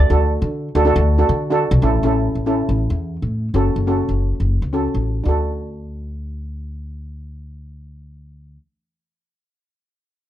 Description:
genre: calypso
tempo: 139 BPM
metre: 4/4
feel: straight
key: D major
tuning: A4 = 440 Hz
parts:
  - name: steel pan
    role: melody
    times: 0.0-1.4 s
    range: A4 to D5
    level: -24 LUFS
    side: right 8 dB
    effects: none
  - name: upright bass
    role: bass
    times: 0.0-8.6 s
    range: F#1 to D3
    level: -19 LUFS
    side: equal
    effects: none
  - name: steel pan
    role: accompaniment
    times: 0.1-8.6 s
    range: C#4 to A4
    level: -20 LUFS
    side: right 1 dB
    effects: none
room: light reverb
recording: none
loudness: -16 LUFS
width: side -12 dB against mid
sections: 0.0-1.8 A section; 1.8-5.3 B section; 5.3-8.7 C section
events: none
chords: 0.0 D; 1.8 A; 3.5 F#m; 5.3 D

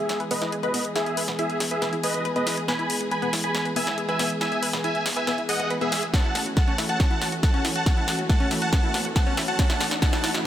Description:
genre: uplifting trance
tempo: 139 BPM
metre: 4/4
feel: straight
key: unclear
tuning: A4 = 440 Hz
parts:
  - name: big supersaw lead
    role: melody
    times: 0.0-10.3 s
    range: G#4 to B5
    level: -27 LUFS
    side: equal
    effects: cassette tape, sidechain pumping, low-pass filter, digital delay
  - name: dark studio string section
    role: sustained chords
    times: 0.0-10.5 s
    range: E3 to G#4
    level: -30 LUFS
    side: equal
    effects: sidechain pumping
  - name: tight sequenced synth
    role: arpeggios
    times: 0.0-10.4 s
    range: B3 to B4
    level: -31 LUFS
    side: left 2 dB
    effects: chorus, sidechain pumping, digital delay
  - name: house drum kit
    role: drums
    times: 0.1-10.4 s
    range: hi-hat, snare drum, toms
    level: -29 LUFS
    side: left 1 dB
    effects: high-pass filter on snare, sidechain pumping on hats, high-pass filter on hats, sidechain pumping on toms, high-pass filter on toms
  - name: electronic kick drum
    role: drums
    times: 6.1-10.1 s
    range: none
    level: -21 LUFS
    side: equal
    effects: none
  - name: riser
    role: sound effects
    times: 7.6-10.5 s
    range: none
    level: -35 LUFS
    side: right 1 dB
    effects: none
room: light reverb, digital ambience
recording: none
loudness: -22 LUFS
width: side -11 dB against mid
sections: 0.0-10.5 A section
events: build-up 0.0-10.5; drum fill 0.0-10.5; filter sweep on supersaw synth 0.0-10.5; riser 7.6-10.5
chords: 0.0 E; 6.1 A6

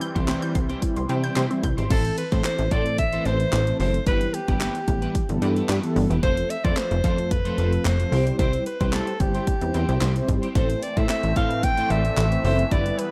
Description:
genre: dance-pop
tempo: 111 BPM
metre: 4/4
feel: straight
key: A minor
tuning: A4 = 441 Hz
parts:
  - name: filtered supersaw swell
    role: sustained chords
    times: 0.0-1.9, 10.6-13.1 s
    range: E3 to C4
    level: -36 LUFS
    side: equal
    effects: sidechain pumping
  - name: resonant blip pluck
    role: arpeggios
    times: 0.0-1.9 s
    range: C4 to G6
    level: -35 LUFS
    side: equal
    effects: phaser, sidechain pumping, dub echo
  - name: electric guitar at the edge of break-up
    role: riff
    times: 0.0-13.0 s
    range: B3 to C5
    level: -38 LUFS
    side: equal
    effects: ensemble chorus
  - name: house drum kit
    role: drums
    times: 0.0-13.1 s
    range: crash cymbal, handclaps, hi-hat, kick drum, snare drum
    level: -28 LUFS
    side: equal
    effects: none
  - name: mellow synth brass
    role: accompaniment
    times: 0.2-13.0 s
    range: E3 to D5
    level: -31 LUFS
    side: equal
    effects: chorus
  - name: plucky analog bass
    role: bass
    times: 0.2-12.9 s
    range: E1 to C3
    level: -26 LUFS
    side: equal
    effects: sidechain pumping
  - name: breathy alto saxophone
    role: melody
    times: 1.9-13.1 s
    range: G4 to G5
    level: -29 LUFS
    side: equal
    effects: none
room: light reverb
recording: rough home demo mix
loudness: -23 LUFS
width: mono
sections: 0.0-1.9 A section; 1.9-13.1 B section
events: none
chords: 0.0 C; 1.9 Am; 4.1 Em/G; 6.2 F; 8.1 C; 10.6 Am

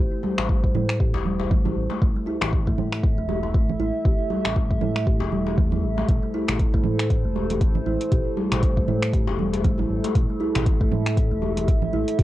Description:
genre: afro house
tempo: 118 BPM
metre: 4/4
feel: swing 57% on 16ths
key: A minor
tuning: A4 = 435 Hz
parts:
  - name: dark analog pad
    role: sustained chords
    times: 0.0-12.2 s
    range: A3 to E5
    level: -29 LUFS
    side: right 1 dB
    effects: chorus, phaser, sidechain pumping
  - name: kalimba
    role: arpeggios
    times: 0.0-12.2 s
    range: E3 to G4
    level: -29 LUFS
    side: equal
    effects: vintage 12-bit sampler grit, sidechain pumping, tape echo
  - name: smooth synth bass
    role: bass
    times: 0.0-12.2 s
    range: E1 to A2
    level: -27 LUFS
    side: equal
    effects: sidechain pumping
  - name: congas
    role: percussion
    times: 0.2-12.0 s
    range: none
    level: -30 LUFS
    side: right 8 dB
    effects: none
  - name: djembe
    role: percussion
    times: 0.2-11.7 s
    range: none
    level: -32 LUFS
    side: left 10 dB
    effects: none
  - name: afro-pop drum kit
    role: drums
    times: 0.4-12.2 s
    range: finger snaps, hi-hat, toms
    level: -28 LUFS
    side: equal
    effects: cassette tape
  - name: electronic kick drum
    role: drums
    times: 0.5-12.2 s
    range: none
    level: -21 LUFS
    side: equal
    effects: overdrive, cassette tape
room: little or no reverb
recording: home recording on cassette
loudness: -20 LUFS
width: side -15 dB against mid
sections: 0.0-12.2 A section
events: none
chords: 0.0 Am7

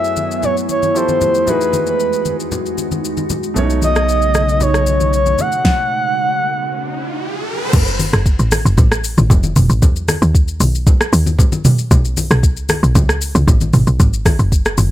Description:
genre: amapiano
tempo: 115 BPM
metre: 4/4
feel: straight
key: F# dorian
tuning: A4 = 440 Hz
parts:
  - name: breathy flute-like synth lead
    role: melody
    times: 0.0-7.2 s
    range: B4 to F#5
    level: -17 LUFS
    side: equal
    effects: chorus, digital delay
  - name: warm baby grand piano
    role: accompaniment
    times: 0.0-5.4 s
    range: B2 to C#5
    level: -24 LUFS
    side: right 3 dB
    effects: none
  - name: glassy FM pad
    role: sustained chords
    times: 0.0-5.6 s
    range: E2 to G#5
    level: -23 LUFS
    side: left 1 dB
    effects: ensemble chorus, built-in reverb, sidechain pumping
  - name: smooth R&B drum kit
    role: drums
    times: 0.0-14.9 s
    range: crash cymbal, hi-hat, kick drum, rim click, shaker, snare drum, toms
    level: -15 LUFS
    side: equal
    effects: none
  - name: congas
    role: percussion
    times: 0.2-14.9 s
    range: none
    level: -22 LUFS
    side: left 1 dB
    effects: none
  - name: saturated sub bass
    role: bass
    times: 3.6-5.4 s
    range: B1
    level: -17 LUFS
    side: equal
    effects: none
  - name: riser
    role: sound effects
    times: 6.4-7.7 s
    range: none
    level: -24 LUFS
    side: right 1 dB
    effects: none
  - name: woody log drum bass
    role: bass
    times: 7.7-14.9 s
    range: F1 to E2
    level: -14 LUFS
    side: equal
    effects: none
room: digital ambience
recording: none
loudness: -12 LUFS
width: side -13 dB against mid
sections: 0.0-7.7 A section; 7.7-14.9 B section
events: stop 5.6-7.7; riser 6.4-7.7; drop 7.7-14.9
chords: 0.0 F#m11; 1.0 Fmaj9; 1.5 Emaj9; 3.6 B9; 5.4 G#m7; 7.7 F#m; 9.3 F; 9.8 E5; 11.9 Bsus2; 13.7 G#7(no3)

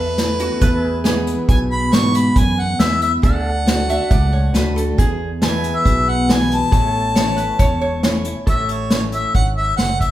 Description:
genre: honky-tonk and classic country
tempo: 138 BPM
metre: 4/4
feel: straight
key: A major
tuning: A4 = 440 Hz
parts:
  - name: warm harmonica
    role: melody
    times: 0.0-10.1 s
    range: B4 to C#6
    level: -21 LUFS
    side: equal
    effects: none
  - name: picked steel-string acoustic guitar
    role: accompaniment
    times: 0.0-10.1 s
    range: E2 to F#4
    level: -22 LUFS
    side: left 2 dB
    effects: none
  - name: pedal steel guitar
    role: sustained chords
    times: 0.0-10.1 s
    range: G#4 to F#5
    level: -28 LUFS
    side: right 2 dB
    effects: none
  - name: fingered electric bass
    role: bass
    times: 0.0-10.1 s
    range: E1 to G#2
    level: -22 LUFS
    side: equal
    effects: none
  - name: unplugged drum kit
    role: drums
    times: 0.2-10.1 s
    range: hi-hat, kick drum, snare drum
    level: -17 LUFS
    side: equal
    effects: none
  - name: lap resonator guitar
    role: second line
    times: 0.4-8.4 s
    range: F#4 to E5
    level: -25 LUFS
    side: right 3 dB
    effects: none
room: moderate large studio reverb, RT60 0.8 s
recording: band playing live in one room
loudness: -15 LUFS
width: side -13 dB against mid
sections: 0.0-8.5 A section; 8.5-10.1 B section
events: none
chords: 0.0 Esus4; 0.6 E; 3.2 D; 5.0 E; 6.7 A

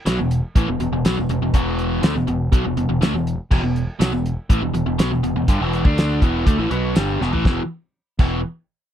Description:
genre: classic rock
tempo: 122 BPM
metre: 4/4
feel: straight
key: unclear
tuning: A4 = 442 Hz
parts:
  - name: biting overdriven guitar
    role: riff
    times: 0.1-8.4 s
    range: E2 to D4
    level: -21 LUFS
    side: equal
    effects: none
  - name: growling fingered electric bass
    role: bass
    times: 0.1-8.4 s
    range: E1 to D2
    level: -24 LUFS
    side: equal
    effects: overdrive
  - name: cloth-damped thuddy drum kit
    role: drums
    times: 0.1-8.3 s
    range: crash cymbal, hi-hat, kick drum, snare drum, tambourine, toms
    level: -17 LUFS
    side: equal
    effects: none
room: little or no reverb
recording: dry, close 1970s-style studio recording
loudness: -17 LUFS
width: side -10 dB against mid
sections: 0.0-7.5 A section; 7.5-8.9 B section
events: drum fill 7.2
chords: 0.0 E5

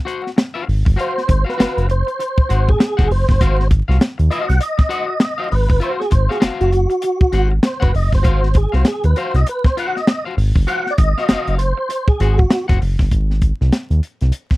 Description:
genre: funk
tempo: 99 BPM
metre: 4/4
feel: swing 60% on 16ths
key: Ab mixolydian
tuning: A4 = 439 Hz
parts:
  - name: electric guitar at the edge of break-up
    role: accompaniment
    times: 0.1-13.0 s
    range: Gb4 to Gb5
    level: -25 LUFS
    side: left 5 dB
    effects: none
  - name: crisp fusion drum kit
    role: drums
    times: 0.1-14.6 s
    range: hi-hat, kick drum, snare drum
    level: -16 LUFS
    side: equal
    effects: none
  - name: round analog bass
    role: bass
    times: 0.7-14.3 s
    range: Gb1 to Eb2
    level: -15 LUFS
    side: equal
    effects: none
  - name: mellow tonewheel organ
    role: melody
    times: 1.0-12.7 s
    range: Gb4 to Gb5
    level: -20 LUFS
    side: right 1 dB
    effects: chorus vibrato, fast rotary speaker
room: little or no reverb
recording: dry, close 1970s-style studio recording, vinyl crackle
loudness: -14 LUFS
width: side -19 dB against mid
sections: 0.0-13.1 A section; 13.1-14.6 B section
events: tonewheel organ solo 0.0-13.1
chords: 0.0 Ab6; 13.1 Ab

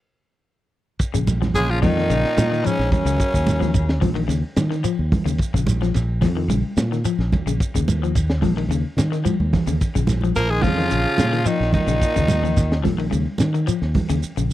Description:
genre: afrobeat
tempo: 109 BPM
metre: 4/4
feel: straight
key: Bb minor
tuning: A4 = 438 Hz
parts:
  - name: fingered electric bass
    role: bass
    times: 1.0-14.5 s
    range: Bb1 to Eb3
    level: -22 LUFS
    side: equal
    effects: none
  - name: crunchy breakbeat drum kit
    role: drums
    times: 1.0-14.2 s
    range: hi-hat, kick drum, ride cymbal, snare drum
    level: -25 LUFS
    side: equal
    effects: none
  - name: shekere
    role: percussion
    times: 1.0-14.5 s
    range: none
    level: -26 LUFS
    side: right 2 dB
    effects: none
  - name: electric guitar at the edge of break-up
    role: arpeggios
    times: 1.1-14.5 s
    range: Db3 to F3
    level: -26 LUFS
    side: left 9 dB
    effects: spring reverb
  - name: congas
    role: percussion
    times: 1.3-14.1 s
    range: none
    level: -25 LUFS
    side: right 3 dB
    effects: none
  - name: growling tenor saxophone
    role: melody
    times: 1.6-4.0, 10.4-12.8 s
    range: Db4 to Bb4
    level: -22 LUFS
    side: equal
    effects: none
  - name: raspy baritone saxophone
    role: second line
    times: 1.6-4.0, 10.4-12.8 s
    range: Db3 to Bb3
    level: -30 LUFS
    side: left 10 dB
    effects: none
  - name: warm trombone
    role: second line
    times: 1.6-4.0, 10.4-12.8 s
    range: Gb2 to F3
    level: -29 LUFS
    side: right 4 dB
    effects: none
room: little or no reverb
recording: dry, close 1970s-style studio recording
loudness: -18 LUFS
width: side -14 dB against mid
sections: 1.0-14.5 A section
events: stop 0.0-1.0; drum fill 9.3-9.8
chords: 0.0 N.C.; 1.0 Bbm

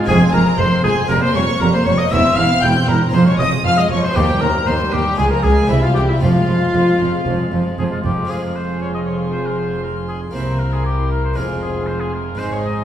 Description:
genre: classical, baroque-style concerto movement with solo episodes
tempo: 117 BPM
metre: 4/4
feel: straight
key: F minor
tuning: A4 = 440 Hz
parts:
  - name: warm oboe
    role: melody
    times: 0.0-12.8 s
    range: E4 to G5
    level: -23 LUFS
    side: left 2 dB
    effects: none
  - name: dark studio violin section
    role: second line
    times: 0.0-12.8 s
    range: E4 to G5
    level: -22 LUFS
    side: left 2 dB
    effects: none
  - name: harpsichord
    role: accompaniment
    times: 0.0-12.8 s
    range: C2 to Ab4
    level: -25 LUFS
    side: equal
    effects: none
  - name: warm chamber viola section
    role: accompaniment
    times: 0.0-12.8 s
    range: Eb3 to F4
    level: -25 LUFS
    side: right 1 dB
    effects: none
  - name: warm chamber violin section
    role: melody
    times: 0.1-12.8 s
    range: E5 to G6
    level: -25 LUFS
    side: left 1 dB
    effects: none
  - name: rich chamber double bass section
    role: bass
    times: 0.1-12.8 s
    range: E1 to Eb2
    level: -21 LUFS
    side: right 2 dB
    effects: none
  - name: warm chamber cello section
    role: bass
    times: 0.1-12.8 s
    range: C2 to Ab2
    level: -20 LUFS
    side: right 2 dB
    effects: none
room: wet recital hall reverb, RT60 1.7 s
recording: heard from further back in the room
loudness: -14 LUFS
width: side -10 dB against mid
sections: 0.0-8.3 A section; 8.3-12.8 B section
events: none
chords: 0.1 Fm; 1.1 Gm7b5/F; 2.1 C/E; 3.1 Fm; 4.2 Cm/Eb; 5.2 Db; 5.7 C; 6.2 Fm; 10.4 C7; 11.4 Fm

